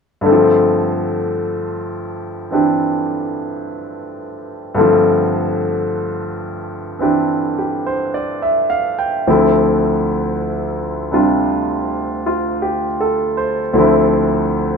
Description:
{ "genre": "jazz", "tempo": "53 BPM", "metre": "4/4", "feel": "swing 67% on 8ths", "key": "unclear", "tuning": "A4 = 439 Hz", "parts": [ { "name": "clear concert grand piano", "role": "accompaniment", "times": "0.2-14.8 s", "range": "D2 to G5", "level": "-15 LUFS", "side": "equal", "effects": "none" } ], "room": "wet small room reverb, RT60 0.5 s", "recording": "band playing live in one room", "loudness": "-14 LUFS", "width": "side -5 dB against mid", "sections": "0.3-14.8 A section", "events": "none", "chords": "0.3 G7sus4; 9.3 Dm9" }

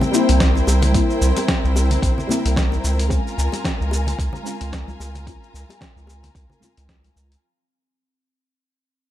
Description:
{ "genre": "organic downtempo", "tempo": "111 BPM", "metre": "4/4", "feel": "swing 57% on 16ths", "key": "unclear", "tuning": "A4 = 440 Hz", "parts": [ { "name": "deep mellow chord stab", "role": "accompaniment", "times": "0.0-7.4 s", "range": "G3 to F4", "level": "-24 LUFS", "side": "left 2 dB", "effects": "chorus, sidechain pumping, ping-pong delay" }, { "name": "rich symphonic string section", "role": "sustained chords", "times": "0.0-7.4 s", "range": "E4 to Bb5", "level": "-27 LUFS", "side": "left 1 dB", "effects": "sidechain pumping" }, { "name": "dusty soul sampler-style drum kit", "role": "drums", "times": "0.0-7.4 s", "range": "hi-hat, shaker, snare drum", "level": "-26 LUFS", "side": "equal", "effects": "none" }, { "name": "congas and bongos", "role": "percussion", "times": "0.0-7.1 s", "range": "none", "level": "-29 LUFS", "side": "left 2 dB", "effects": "none" }, { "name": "bronze singing bowl", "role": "texture", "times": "0.0-7.4 s", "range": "C4 to C6", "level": "-29 LUFS", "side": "left 1 dB", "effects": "none" }, { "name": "round analog bass", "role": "bass", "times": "0.3-7.4 s", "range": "Bb1 to Db2", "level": "-19 LUFS", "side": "equal", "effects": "sidechain pumping" }, { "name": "electronic kick drum", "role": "drums", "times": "0.4-7.0 s", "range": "none", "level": "-23 LUFS", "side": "equal", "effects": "none" } ], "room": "light reverb, small room ambience", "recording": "none", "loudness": "-17 LUFS", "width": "side -12 dB against mid", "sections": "0.0-7.4 A section", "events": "fade-out 0.0-7.4", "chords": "0.0 C7; 3.1 Bbm7/Db" }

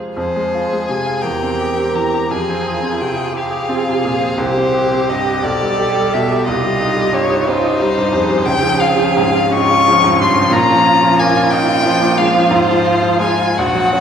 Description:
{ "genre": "classical, slow romantic movement for piano quartet", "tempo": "52-62 BPM (dotted quarters)", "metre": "6/8", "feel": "rubato", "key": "F minor", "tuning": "A4 = 440 Hz", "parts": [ { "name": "bright grand piano", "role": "accompaniment", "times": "0.0-14.0 s", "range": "Bb1 to C5", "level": "-18 LUFS", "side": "right 1 dB", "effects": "none" }, { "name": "rich violin", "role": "melody", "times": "0.2-14.0 s", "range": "C5 to Db6", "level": "-16 LUFS", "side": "left 3 dB", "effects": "none" }, { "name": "clear violin", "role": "second line", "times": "0.2-14.0 s", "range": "Db4 to Bb4", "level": "-22 LUFS", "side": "right 1 dB", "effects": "none" }, { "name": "rich cello", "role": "second line", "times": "1.2-14.0 s", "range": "Eb4 to A4", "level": "-20 LUFS", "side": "right 4 dB", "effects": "none" } ], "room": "wet church reverb, RT60 3.4 s", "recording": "recorded in a church or concert hall", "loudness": "-13 LUFS", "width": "side -8 dB against mid", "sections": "0.2-14.0 A section", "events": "none", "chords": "0.2 Fm; 1.2 C/E; 2.3 Fm; 4.4 C5; 5.4 G/B; 6.5 Cm; 8.5 Db; 10.5 Bbm; 12.5 Fm/Ab" }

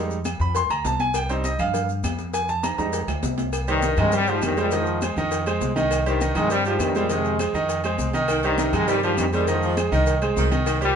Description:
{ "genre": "latin, salsa", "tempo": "202 BPM", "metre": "4/4", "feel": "straight", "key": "unclear", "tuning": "A4 = 441 Hz", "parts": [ { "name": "bright grand piano", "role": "accompaniment", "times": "0.0-10.9 s", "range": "Eb3 to C6", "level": "-24 LUFS", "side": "right 3 dB", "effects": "none" }, { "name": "upright bass", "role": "bass", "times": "0.0-11.0 s", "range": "C2 to G2", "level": "-26 LUFS", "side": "left 1 dB", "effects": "none" }, { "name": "congas", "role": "percussion", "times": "0.1-11.0 s", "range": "none", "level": "-33 LUFS", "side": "left 4 dB", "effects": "none" }, { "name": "maracas", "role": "percussion", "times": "0.1-11.0 s", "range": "none", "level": "-39 LUFS", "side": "left 5 dB", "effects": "none" }, { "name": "agogo bells and timbales", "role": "percussion", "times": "0.3-11.0 s", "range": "none", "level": "-35 LUFS", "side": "right 6 dB", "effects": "none" }, { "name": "claves", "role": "percussion", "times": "0.3-10.8 s", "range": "none", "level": "-39 LUFS", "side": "left 2 dB", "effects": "none" }, { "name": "cowbell", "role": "percussion", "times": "0.3-10.8 s", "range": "none", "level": "-34 LUFS", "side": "left 7 dB", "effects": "none" }, { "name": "bright trombone section", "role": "melody", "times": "3.7-11.0 s", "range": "G2 to Ab3", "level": "-23 LUFS", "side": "left 1 dB", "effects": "none" }, { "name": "clear saxophone section", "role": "second line", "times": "8.3-10.8 s", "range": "C3 to F3", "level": "-30 LUFS", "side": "equal", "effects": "none" } ], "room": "moderate studio reverb, RT60 0.6 s", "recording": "band playing live in one room, nothing above 10.8 kHz", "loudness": "-20 LUFS", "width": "side -7 dB against mid", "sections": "0.0-3.5 A section; 3.5-11.0 B section", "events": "grand piano solo 0.0-3.5; drum fill 2.6-3.5", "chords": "0.0 Fm7; 1.1 Cm; 2.3 Fm7; 3.5 Cm; 4.7 Fm7; 5.9 Cm; 7.1 Fm7; 8.3 Cm; 9.5 Fm7" }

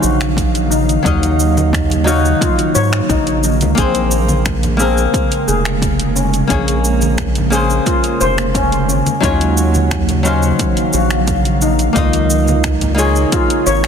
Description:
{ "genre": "sunset chillout", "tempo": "88 BPM", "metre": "4/4", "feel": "straight", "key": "Eb dorian", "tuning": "A4 = 440 Hz", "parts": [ { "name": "flamenco guitar", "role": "accompaniment", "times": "0.0-13.9 s", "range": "Gb3 to F5", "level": "-19 LUFS", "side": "moving between left 5 dB and right 5 dB", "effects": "auto-pan, digital delay" }, { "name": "ethereal airy pad", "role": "sustained chords", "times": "0.0-13.9 s", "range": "Db3 to F5", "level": "-19 LUFS", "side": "right 1 dB", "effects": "ensemble chorus, built-in reverb" }, { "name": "steel pan", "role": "arpeggios", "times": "0.0-13.9 s", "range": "C4 to Db5", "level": "-20 LUFS", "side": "left 4 dB", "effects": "digital delay" }, { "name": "round analog bass", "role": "bass", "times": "0.0-13.9 s", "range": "F1 to Ab2", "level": "-17 LUFS", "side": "equal", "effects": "none" }, { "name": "deep house drum kit", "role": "drums", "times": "0.0-13.9 s", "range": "finger snaps, hi-hat, shaker", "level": "-23 LUFS", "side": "right 1 dB", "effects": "overdrive, soft clipping on snare" }, { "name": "electronic kick drum", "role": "drums", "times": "0.4-13.5 s", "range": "none", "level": "-20 LUFS", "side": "equal", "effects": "overdrive" }, { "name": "congas", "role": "percussion", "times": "1.6-13.0 s", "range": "none", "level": "-23 LUFS", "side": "left 3 dB", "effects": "none" } ], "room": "light reverb", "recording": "dense, heavily limited modern master", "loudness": "-12 LUFS", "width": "side -7 dB against mid", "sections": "0.0-13.9 A section", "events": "none", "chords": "0.0 Ebm9; 3.8 Bbm9; 9.2 Ebm9; 12.0 Db69" }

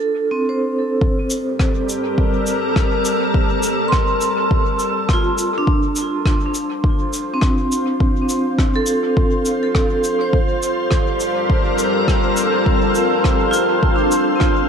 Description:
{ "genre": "ambient dub", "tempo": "103 BPM", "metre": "4/4", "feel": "swing 56% on 16ths", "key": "G minor", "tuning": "A4 = 442 Hz", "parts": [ { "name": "vibraphone with medium mallets", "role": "arpeggios", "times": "0.0-14.7 s", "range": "C4 to C6", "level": "-20 LUFS", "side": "right 1 dB", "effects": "dub echo" }, { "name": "soft additive organ-like pad", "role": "sustained chords", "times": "1.5-14.7 s", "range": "G3 to C5", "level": "-20 LUFS", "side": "equal", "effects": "ensemble chorus, built-in reverb" }, { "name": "electronic kick drum", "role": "drums", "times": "1.0-14.5 s", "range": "none", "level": "-18 LUFS", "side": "equal", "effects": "none" }, { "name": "cabasa and rim click", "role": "drums", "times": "1.3-14.5 s", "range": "none", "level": "-27 LUFS", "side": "left 1 dB", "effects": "dub echo" }, { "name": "backwards swelling texture", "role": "texture", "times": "11.6-14.7 s", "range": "C4 to C5", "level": "-27 LUFS", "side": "left 3 dB", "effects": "built-in reverb" } ], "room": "light reverb, small room ambience", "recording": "none", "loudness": "-15 LUFS", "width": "side -7 dB against mid", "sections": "0.0-1.0 A section; 1.0-14.7 A section", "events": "break 0.0-1.0", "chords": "0.0 Dm7; 1.0 Gmadd9; 5.7 Dm7 (rootless); 10.3 Gm11" }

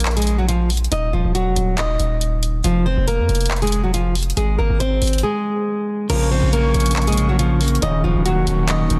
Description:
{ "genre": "hip hop, trap", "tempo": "139 BPM", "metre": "4/4", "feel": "half-time", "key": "Bb minor", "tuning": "A4 = 440 Hz", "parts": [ { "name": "flamenco guitar", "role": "melody", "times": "0.0-9.0 s", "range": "F3 to Eb5", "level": "-24 LUFS", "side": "equal", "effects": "none" }, { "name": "hard-hitting 808-style bass", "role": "bass", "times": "0.0-9.0 s", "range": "Eb1 to F2", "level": "-22 LUFS", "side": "equal", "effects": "none" }, { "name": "trap drum kit", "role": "drums", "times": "0.0-9.0 s", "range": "crash cymbal, handclaps, hi-hat", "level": "-28 LUFS", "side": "equal", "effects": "none" }, { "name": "electric guitar at the edge of break-up", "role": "accompaniment", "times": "6.1-9.0 s", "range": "Db3 to Db4", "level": "-23 LUFS", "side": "equal", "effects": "spring reverb" }, { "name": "dark woodwind section", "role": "sustained chords", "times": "6.1-9.0 s", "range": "Bb4 to Db6", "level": "-32 LUFS", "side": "equal", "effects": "none" }, { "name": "clear brass ensemble", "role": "stabs", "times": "6.1-8.2 s", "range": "Bb1 to F3", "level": "-34 LUFS", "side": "equal", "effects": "tape echo" } ], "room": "studio ambience", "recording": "dense, heavily limited modern master, lossy compression artefacts", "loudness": "-19 LUFS", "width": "mono", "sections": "0.0-6.1 A section; 6.1-9.0 B section", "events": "break 5.2-6.1", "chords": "0.0 Bb5; 0.9 Ebm; 2.6 Fm; 4.4 Ab; 6.1 Bbm; 7.8 Ebm7" }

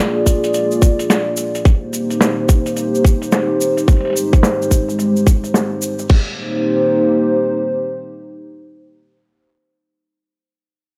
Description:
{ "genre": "glitch hop", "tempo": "108 BPM", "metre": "4/4", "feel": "swing 63% on 16ths", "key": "C minor", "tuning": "A4 = 440 Hz", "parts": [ { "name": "dark analog pad", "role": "sustained chords", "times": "0.0-9.1 s", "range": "Ab3 to D5", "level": "-20 LUFS", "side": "equal", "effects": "chorus, vintage 12-bit sampler grit, sidechain pumping" }, { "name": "boom bap sampler-style drum kit", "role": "drums", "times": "0.3-6.2 s", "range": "crash cymbal, hi-hat, snare drum", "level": "-21 LUFS", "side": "equal", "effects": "low-pass filter on hats, small room ambience, low-pass filter on snare, low-pass filter on cymbals" }, { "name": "electronic kick drum", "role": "drums", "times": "0.3-6.2 s", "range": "none", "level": "-14 LUFS", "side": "equal", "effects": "small room ambience" }, { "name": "cabasa", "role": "percussion", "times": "0.3-6.1 s", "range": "none", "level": "-30 LUFS", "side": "equal", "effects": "none" } ], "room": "moderate lush hall reverb, RT60 2.3 s", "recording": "dry, gritty hardware recording", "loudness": "-16 LUFS", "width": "mono", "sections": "0.0-6.1 A section; 6.1-8.3 B section", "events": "filter sweep on drum 0.0-6.1", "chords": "0.0 Bb7; 1.7 Eb6; 3.9 Abmaj7; 6.1 Cm7" }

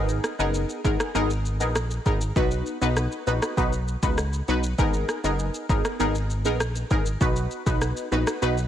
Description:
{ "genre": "dancehall", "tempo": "99 BPM", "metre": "4/4", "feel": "straight", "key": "G# minor", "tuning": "A4 = 440 Hz", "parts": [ { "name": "synth brass stab", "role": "accompaniment", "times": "0.0-8.6 s", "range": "B3 to B4", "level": "-26 LUFS", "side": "equal", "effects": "chorus, phaser" }, { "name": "plucky analog bass", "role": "bass", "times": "0.0-8.7 s", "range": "F#1 to C#2", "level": "-26 LUFS", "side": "equal", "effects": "none" }, { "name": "deep house drum kit", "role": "drums", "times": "0.1-8.7 s", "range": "kick drum, rim click, shaker", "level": "-27 LUFS", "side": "equal", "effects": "none" } ], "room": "light reverb", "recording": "none", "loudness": "-22 LUFS", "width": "side -10 dB against mid", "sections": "0.0-8.7 A section", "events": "kick muted 8.4", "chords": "0.0 G#madd9; 2.4 B; 4.8 G#madd9; 7.2 B" }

